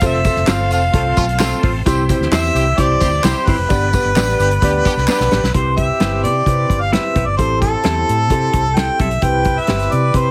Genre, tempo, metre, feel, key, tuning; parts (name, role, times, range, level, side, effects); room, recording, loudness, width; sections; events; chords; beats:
uptempo 1960s-style soul; 130 BPM; 4/4; straight; C major; A4 = 440 Hz
mellow harmonica; melody; 0.0-10.3 s; A4 to G5; -21 LUFS; equal
warm upright piano; accompaniment; 0.0-10.3 s; B3 to D5; -24 LUFS; equal; plate reverb
bright tonewheel organ; sustained chords; 0.0-5.5 s; D3 to C4; -32 LUFS; equal
vintage muted fingered electric bass; bass; 0.0-10.3 s; F1 to C3; -22 LUFS; equal
natural country drum kit; drums; 0.0-10.2 s; hi-hat, kick drum, snare drum; -22 LUFS; equal
tambourine and handclaps; percussion; 0.0-5.4 s; -31 LUFS; equal
semi-hollow electric guitar; stabs; 0.5-9.8 s; G3 to C5; -25 LUFS; equal
warm horn section; second line; 0.7-10.3 s; A3 to B4; -28 LUFS; equal; plate reverb
light reverb; heavily compressed radio sound, multiband compression; -16 LUFS; mono
0.0-5.5 A section; 5.5-10.3 B section
drum fill 5.1-5.5
0.0 F; 1.9 C; 3.7 G; 5.5 Cmaj7; 7.4 Am7; 9.2 Cmaj7
| 0.02 0.48 0.94 1.40 | 1.86 2.32 2.78 3.24 | 3.70 4.16 4.62 5.08 | 5.54 6.00 6.46 6.92 | 7.38 7.84 8.30 8.77 | 9.23 9.69 10.15